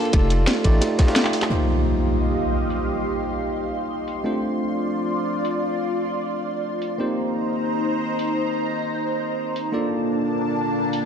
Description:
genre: liquid drum and bass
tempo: 175 BPM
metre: 4/4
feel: straight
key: Eb lydian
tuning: A4 = 440 Hz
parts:
  - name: clean electric guitar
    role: melody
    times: 0.0-1.1 s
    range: A4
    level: -31 LUFS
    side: equal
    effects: tape echo
  - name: bell-like tine electric piano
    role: accompaniment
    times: 0.0-11.1 s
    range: A3 to G5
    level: -25 LUFS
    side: equal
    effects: tape echo
  - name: saturated sub bass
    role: bass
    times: 0.1-0.8 s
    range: F1 to A1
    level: -20 LUFS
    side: equal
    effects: none
  - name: crunchy breakbeat drum kit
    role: drums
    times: 0.1-1.5 s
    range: ride cymbal, snare drum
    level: -33 LUFS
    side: equal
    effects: high-pass filter on cymbals, high-pass filter on snare, high-pass filter on room
  - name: drum and bass drum kit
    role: drums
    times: 0.1-11.0 s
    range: handclaps, hi-hat, snare drum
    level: -25 LUFS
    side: equal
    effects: low-pass filter on hats, low-pass filter on snare
  - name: electronic kick drum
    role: drums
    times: 0.1-1.1 s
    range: none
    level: -17 LUFS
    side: equal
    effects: none
  - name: lush unison pad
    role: sustained chords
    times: 1.9-11.1 s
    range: Bb3 to C6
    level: -25 LUFS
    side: equal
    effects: chorus, phaser
  - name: impact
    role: sound effects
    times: 1.5-2.9 s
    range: none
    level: -24 LUFS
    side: equal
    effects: none
room: moderate lush hall reverb, RT60 2.0 s, digital ambience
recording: dark, warm production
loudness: -20 LUFS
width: side -7 dB against mid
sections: 0.0-1.5 A section; 1.5-11.1 B section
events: drop 0.0-1.5; drum fill 1.2; impact 1.5-2.9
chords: 0.1 F13; 1.5 Eb69; 4.2 Dm7; 7.0 Cm7; 9.7 Bbmaj7

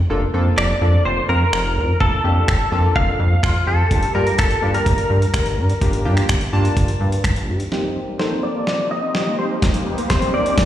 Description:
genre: dance-pop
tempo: 126 BPM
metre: 4/4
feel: straight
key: C dorian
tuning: A4 = 440 Hz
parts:
  - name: chorused retro synth keys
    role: accompaniment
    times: 0.1-10.6 s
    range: Bb3 to A5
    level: -25 LUFS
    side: equal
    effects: tremolo, sidechain pumping, low-pass filter, plate reverb, slapback echo
  - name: chorused synth bass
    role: bass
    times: 0.1-7.6 s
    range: F1 to G2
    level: -18 LUFS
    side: equal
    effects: sidechain pumping
  - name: direct-recorded clean electric guitar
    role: melody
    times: 0.6-10.7 s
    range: F4 to F5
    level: -21 LUFS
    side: equal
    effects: ensemble chorus, low-pass filter, ping-pong delay, plate reverb, slapback echo
  - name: boom bap sampler-style drum kit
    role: drums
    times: 0.6-10.7 s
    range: finger snaps, hi-hat, kick drum, snare drum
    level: -20 LUFS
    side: equal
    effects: overdrive
  - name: shimmering ambient pad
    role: sustained chords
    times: 8.6-10.7 s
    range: Bb3 to C5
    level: -27 LUFS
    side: equal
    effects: chorus, built-in reverb, sidechain pumping, low-pass filter, plate reverb
  - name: analog pluck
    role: arpeggios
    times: 7.7-10.5 s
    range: G3 to C4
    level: -28 LUFS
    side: left 1 dB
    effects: chorus, sidechain pumping, low-pass filter, ping-pong delay, plate reverb, slapback echo
  - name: riser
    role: sound effects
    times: 8.5-10.7 s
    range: none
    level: -29 LUFS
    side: left 1 dB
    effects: slapback echo
room: light reverb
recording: live gig heard through the venue's PA, recital hall reverb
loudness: -16 LUFS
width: side -12 dB against mid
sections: 0.0-7.7 A section; 7.7-10.7 B section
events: build-up 7.7-10.7; drum fill 7.7-10.7; filter sweep 7.7-10.7; riser 8.5-10.7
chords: 0.1 Bbmaj7/F; 3.9 Gm7; 7.7 Cm7

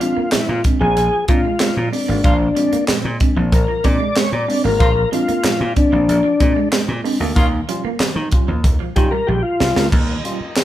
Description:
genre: funk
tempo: 94 BPM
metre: 4/4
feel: straight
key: Bb mixolydian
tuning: A4 = 438 Hz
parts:
  - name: tonewheel organ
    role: melody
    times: 0.0-9.9 s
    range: D4 to D5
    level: -18 LUFS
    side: left 2 dB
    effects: chorus vibrato, slow rotary speaker
  - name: warm horn section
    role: second line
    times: 0.0-10.6 s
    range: Bb3 to F5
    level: -26 LUFS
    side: equal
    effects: none
  - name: electric guitar through a small old amp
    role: riff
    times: 0.0-9.9 s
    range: F3 to Bb3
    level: -27 LUFS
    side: right 5 dB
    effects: spring reverb
  - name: tine electric piano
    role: stabs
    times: 0.0-10.6 s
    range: Bb2 to F4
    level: -24 LUFS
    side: right 2 dB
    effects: overdrive, fast stereo tremolo
  - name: crisp fusion drum kit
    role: drums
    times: 0.0-10.6 s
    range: crash cymbal, handclaps, hi-hat, kick drum, snare drum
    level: -18 LUFS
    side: equal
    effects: none
  - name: slap bass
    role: bass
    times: 0.2-10.4 s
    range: Ab1 to Eb3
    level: -21 LUFS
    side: equal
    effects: none
room: light reverb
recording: band playing live in one room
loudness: -14 LUFS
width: side -13 dB against mid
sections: 0.0-9.9 A section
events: tonewheel organ solo 0.0-9.9; drum fill 9.3-9.9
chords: 0.0 Bb9; 7.4 Eb9

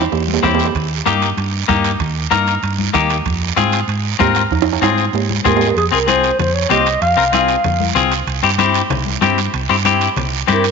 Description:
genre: latin, cumbia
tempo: 191 BPM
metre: 4/4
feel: straight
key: F minor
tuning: A4 = 440 Hz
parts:
  - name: clean electric guitar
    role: accompaniment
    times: 0.0-10.6 s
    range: Bb3 to Bb4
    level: -17 LUFS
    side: left 8 dB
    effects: none
  - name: hollow-body short-scale fingered electric bass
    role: bass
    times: 0.0-10.7 s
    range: C2 to Ab2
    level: -20 LUFS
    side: right 2 dB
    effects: none
  - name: timbales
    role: percussion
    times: 0.0-10.7 s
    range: none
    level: -22 LUFS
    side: right 12 dB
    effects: none
  - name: guiro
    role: percussion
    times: 0.1-10.7 s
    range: none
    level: -25 LUFS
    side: right 14 dB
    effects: none
  - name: congas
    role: percussion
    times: 0.3-10.6 s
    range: none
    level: -26 LUFS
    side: left 8 dB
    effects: none
  - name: bombo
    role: percussion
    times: 0.4-5.6 s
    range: none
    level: -25 LUFS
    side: right 6 dB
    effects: none
  - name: breathy clarinet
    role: melody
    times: 5.5-7.9, 10.5-10.7 s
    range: Ab4 to F5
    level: -17 LUFS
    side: right 1 dB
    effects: none
room: moderate echo chamber reverb, RT60 1.8 s, studio ambience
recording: 1960s-style stereo with parts hard left and right, nothing above 7.5 kHz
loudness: -13 LUFS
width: side -5 dB against mid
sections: 0.0-5.8 A section; 5.8-10.7 B section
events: drum fill 0.0-0.8, 4.5-5.8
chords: 0.0 C; 0.8 Eb; 3.3 Fm; 8.3 C

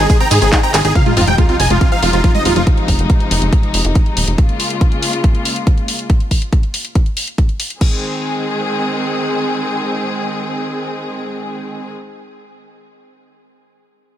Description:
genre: uplifting trance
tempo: 140 BPM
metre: 4/4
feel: straight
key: Ab major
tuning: A4 = 440 Hz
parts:
  - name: dense compressed supersaw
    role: melody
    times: 0.0-2.6 s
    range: F4 to Bb5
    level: -17 LUFS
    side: right 2 dB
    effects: sidechain pumping, dub echo
  - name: wide unison pluck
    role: second line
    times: 0.0-0.9 s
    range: Ab4 to Bb5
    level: -26 LUFS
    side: right 1 dB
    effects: none
  - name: rich studio string section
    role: sustained chords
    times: 0.0-11.9 s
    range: C3 to Ab4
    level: -20 LUFS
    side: left 1 dB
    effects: sidechain pumping, low-pass filter
  - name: tight sequenced synth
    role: arpeggios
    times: 0.0-2.6 s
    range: F3 to Eb4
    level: -23 LUFS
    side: left 2 dB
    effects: chorus, phaser, sidechain pumping, digital delay
  - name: plucky analog bass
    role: bass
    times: 0.0-4.4 s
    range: Eb1 to Ab2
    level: -16 LUFS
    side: equal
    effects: tube saturation, sidechain pumping
  - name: electronic kick drum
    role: drums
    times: 0.1-7.9 s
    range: none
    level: -13 LUFS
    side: equal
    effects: small room ambience
  - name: house drum kit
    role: drums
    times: 0.1-7.9 s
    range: crash cymbal, handclaps, hi-hat, ride cymbal, shaker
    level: -20 LUFS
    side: left 1 dB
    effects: small room ambience
  - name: sub drop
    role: sound effects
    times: 1.0-2.7 s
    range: none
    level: -23 LUFS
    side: equal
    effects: none
room: little or no reverb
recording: none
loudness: -13 LUFS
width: side -11 dB against mid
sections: 1.0-7.8 A section; 7.8-11.2 B section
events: drum fill 0.7; impact 1.0-2.7; filter sweep on synth arpeggio sound 1.0-2.7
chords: 0.0 Ab; 1.0 Fm7; 4.4 Bbm7; 7.8 Ab

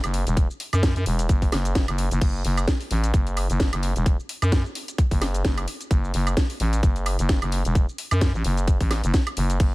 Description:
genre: bass house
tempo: 130 BPM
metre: 4/4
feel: swing 56% on 16ths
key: F# minor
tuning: A4 = 439 Hz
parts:
  - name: growling FM bass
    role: bass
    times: 0.0-9.7 s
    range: E1 to F#2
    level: -23 LUFS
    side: equal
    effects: overdrive, sidechain pumping
  - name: garage drum kit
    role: drums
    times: 0.0-9.7 s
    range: crash cymbal, hi-hat, ride cymbal, shaker, snare drum, woodblock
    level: -29 LUFS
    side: right 1 dB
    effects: none
  - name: electronic kick drum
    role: drums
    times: 0.4-9.7 s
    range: none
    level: -21 LUFS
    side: equal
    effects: none
room: little or no reverb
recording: none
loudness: -20 LUFS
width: side -21 dB against mid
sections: 0.0-9.7 A section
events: none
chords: none

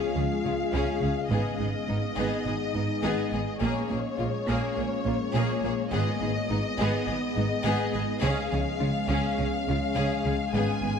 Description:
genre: cinematic, hybrid orchestral and electronic film score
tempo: 104 BPM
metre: 4/4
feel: straight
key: unclear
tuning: A4 = 440 Hz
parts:
  - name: warm symphonic violin section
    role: melody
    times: 0.0-11.0 s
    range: C#5 to G#5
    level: -34 LUFS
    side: left 4 dB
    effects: none
  - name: bright symphonic violin section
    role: second line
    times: 0.0-10.9 s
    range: D#4 to G#4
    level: -35 LUFS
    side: left 4 dB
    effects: none
  - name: rich symphonic viola section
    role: accompaniment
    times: 0.0-10.9 s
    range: A#3 to C#4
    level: -36 LUFS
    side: right 1 dB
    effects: none
  - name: glassy FM pad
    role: sustained chords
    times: 0.0-11.0 s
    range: G#3 to E#5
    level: -33 LUFS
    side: left 4 dB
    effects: ensemble chorus, built-in reverb
  - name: mellow French horn section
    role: sustained chords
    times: 0.0-11.0 s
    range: G#3 to E#4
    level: -35 LUFS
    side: left 4 dB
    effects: none
  - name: harp-like synth pluck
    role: arpeggios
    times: 0.0-11.0 s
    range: C#3 to E#4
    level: -37 LUFS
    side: right 3 dB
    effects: chorus
  - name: rich symphonic cello section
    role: bass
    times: 0.2-10.9 s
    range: G#2 to C#3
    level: -33 LUFS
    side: right 2 dB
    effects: none
  - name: warm symphonic double bass section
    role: bass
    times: 0.2-10.9 s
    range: G#1 to C#2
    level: -32 LUFS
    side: right 3 dB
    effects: none
room: wet scoring stage reverb, RT60 1.6 s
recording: dark, warm production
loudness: -25 LUFS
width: side -7 dB against mid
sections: 0.0-11.0 A section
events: none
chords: 0.0 C#; 1.3 G#m; 3.6 A#m7; 5.9 G#m; 8.2 C#

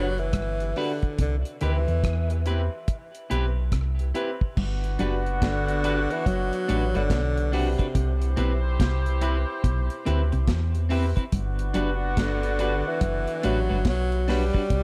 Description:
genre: roots reggae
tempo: 71 BPM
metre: 4/4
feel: swing 62% on 16ths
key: G major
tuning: A4 = 440 Hz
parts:
  - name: breathy tenor saxophone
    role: melody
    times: 0.0-14.8 s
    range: C3 to G3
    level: -32 LUFS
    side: equal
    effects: dub echo
  - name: clean electric guitar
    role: accompaniment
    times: 0.0-14.6 s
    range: C4 to B4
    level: -36 LUFS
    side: equal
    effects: lush chorus, dub echo
  - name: clean electric guitar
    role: riff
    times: 0.0-14.8 s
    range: F#2 to E3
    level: -34 LUFS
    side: equal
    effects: none
  - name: warm upright piano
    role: stabs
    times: 0.0-14.5 s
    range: C4 to B4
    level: -38 LUFS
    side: equal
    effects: none
  - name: soft dub sub bass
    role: bass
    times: 0.0-14.8 s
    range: F#1 to E2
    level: -28 LUFS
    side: equal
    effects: none
  - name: deep reggae drum kit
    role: drums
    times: 0.2-14.8 s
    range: crash cymbal, hi-hat, kick drum, rim click, snare drum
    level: -29 LUFS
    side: equal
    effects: none
  - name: warm horn section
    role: second line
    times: 4.6-14.8 s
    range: B3 to C5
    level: -35 LUFS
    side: equal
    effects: dub echo
room: light reverb, small room reverb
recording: dark, warm production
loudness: -25 LUFS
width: mono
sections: 0.0-4.6 A section; 4.6-14.8 B section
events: none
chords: 0.0 Gmaj7; 1.2 Cmaj7; 4.6 Gmaj7; 8.0 Cmaj7; 11.3 Gmaj7

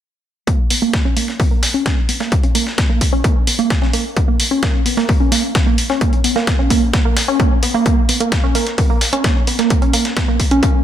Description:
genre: driving peak-time techno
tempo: 130 BPM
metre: 4/4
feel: straight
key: Bb phrygian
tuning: A4 = 439 Hz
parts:
  - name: tight sequenced synth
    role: riff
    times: 0.5-10.7 s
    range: Bb3 to Db4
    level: -18 LUFS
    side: right 2 dB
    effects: chorus, tube saturation, sidechain pumping, digital delay
  - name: dusty soul sampler-style drum kit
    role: drums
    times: 0.5-10.7 s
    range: hi-hat, snare drum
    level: -25 LUFS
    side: left 1 dB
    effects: high-pass filter on hats, high-pass filter on snare
  - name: electronic kick drum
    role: drums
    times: 0.5-10.7 s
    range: none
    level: -15 LUFS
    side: left 1 dB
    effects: none
  - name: electronic hi-hat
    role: drums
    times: 0.7-10.7 s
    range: none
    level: -20 LUFS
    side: equal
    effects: none
room: moderate lush hall reverb, RT60 1.6 s, digital ambience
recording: bright 1980s-style digital production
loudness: -13 LUFS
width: side -10 dB against mid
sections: 0.5-10.8 A section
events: filter sweep on synth arpeggio sound 0.5-10.8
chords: none

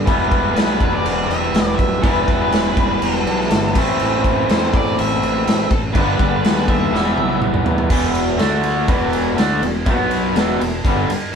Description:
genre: garage rock duo or trio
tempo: 123 BPM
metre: 4/4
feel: straight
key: E minor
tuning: A4 = 440 Hz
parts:
  - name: raw garage guitar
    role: riff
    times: 0.0-11.1 s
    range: E2 to E4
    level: -18 LUFS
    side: equal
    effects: overdrive
  - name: fuzz fingered electric bass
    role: bass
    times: 0.0-11.1 s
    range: E1 to E2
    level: -24 LUFS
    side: equal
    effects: overdrive
  - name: raw garage drum kit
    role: drums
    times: 0.1-11.2 s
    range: crash cymbal, kick drum, ride cymbal, snare drum, toms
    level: -19 LUFS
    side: equal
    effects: none
  - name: octave-fuzz lead guitar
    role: melody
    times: 0.5-7.4 s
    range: A4 to E5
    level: -25 LUFS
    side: equal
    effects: distortion
room: moderate studio reverb, RT60 0.8 s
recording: band playing live in one room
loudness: -15 LUFS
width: side -7 dB against mid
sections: 0.0-7.9 A section; 7.9-11.4 B section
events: drum fill 6.9-7.9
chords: 0.1 Em; 3.8 Am; 6.0 G; 6.9 Em; 7.9 E5; 8.4 D5; 8.9 E5; 9.9 B5; 10.4 Em

